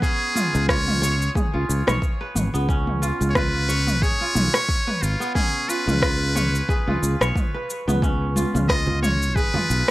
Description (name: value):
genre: organic downtempo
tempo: 90 BPM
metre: 4/4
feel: swing 56% on 16ths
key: Db mixolydian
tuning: A4 = 440 Hz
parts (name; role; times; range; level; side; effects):
- trumpet with metal mute; melody; 0.0-9.9 s; F4 to Eb5; -25 LUFS; equal; analog delay
- kora; arpeggios; 0.0-9.9 s; Cb4 to Db5; -28 LUFS; right 1 dB; tape echo
- deep house drum kit; drums; 0.0-9.9 s; rim click, shaker, toms; -25 LUFS; equal; overdrive, studio reverb
- electronic kick drum; drums; 0.0-9.5 s; none; -23 LUFS; equal; studio reverb
- sustaining fretless electric bass; bass; 0.5-9.8 s; Ab1 to Db2; -22 LUFS; equal; analog chorus, sidechain pumping
- congas; percussion; 8.4-9.7 s; none; -28 LUFS; right 1 dB; none
room: little or no reverb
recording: dry, gritty hardware recording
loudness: -19 LUFS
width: side -17 dB against mid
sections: 0.0-9.9 A section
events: none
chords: 0.0 Db7